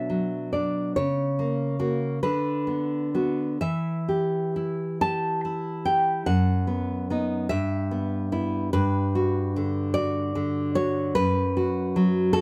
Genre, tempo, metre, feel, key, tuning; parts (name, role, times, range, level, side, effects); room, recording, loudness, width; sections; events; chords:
romantic piece for solo classical guitar; 42-51 BPM (dotted quarters); 6/8; rubato; B minor; A4 = 440 Hz
nylon-string guitar; solo; 0.0-12.4 s; F#2 to A5; -26 LUFS; equal
light reverb; close, detailed microphones; -26 LUFS; mono
0.0-12.4 A section
0.0 Bm; 1.0 F#/C#; 2.2 Bm/D; 3.6 Em; 6.3 B/F#; 7.5 Em/G; 8.7 Gmaj7; 11.1 N.C.